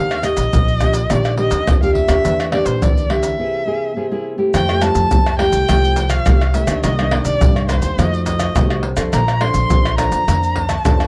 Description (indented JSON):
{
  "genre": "samba and choro",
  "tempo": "105 BPM",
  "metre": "4/4",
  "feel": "straight",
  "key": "F major from 4.5 s",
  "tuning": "A4 = 440 Hz",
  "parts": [
    { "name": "warm erhu", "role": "melody", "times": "0.0-11.1 s", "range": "C5 to C6", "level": "-23 LUFS", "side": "equal", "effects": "none" },
    { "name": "nylon-string guitar", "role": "accompaniment", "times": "0.0-11.1 s", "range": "G2 to C5", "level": "-23 LUFS", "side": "equal", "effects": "none" },
    { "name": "upright bass", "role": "bass", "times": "0.0-11.1 s", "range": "Bb1 to Bb2", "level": "-22 LUFS", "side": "equal", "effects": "none" },
    { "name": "maracas, pandeiro, tamborim and surdo", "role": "percussion", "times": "0.1-11.1 s", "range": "none", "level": "-20 LUFS", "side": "equal", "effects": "none" }
  ],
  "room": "moderate small room reverb, RT60 0.5 s",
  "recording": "dark, warm production",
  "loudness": "-16 LUFS",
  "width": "mono",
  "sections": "0.0-4.5 A section; 4.5-11.1 B section",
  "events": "break 3.4-4.5",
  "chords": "0.0 Ebmaj7; 2.3 Em7b5; 3.4 C7b13; 4.5 Fmaj9; 6.8 Cm9; 8.0 F7b9; 9.1 Bbmaj9",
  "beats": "0.53 1.10 1.68 | 2.25 2.82 3.40 3.97 | 4.54 5.12 5.69 6.26 | 6.83 7.41 7.98 8.55 | 9.13 9.70 10.28 10.85"
}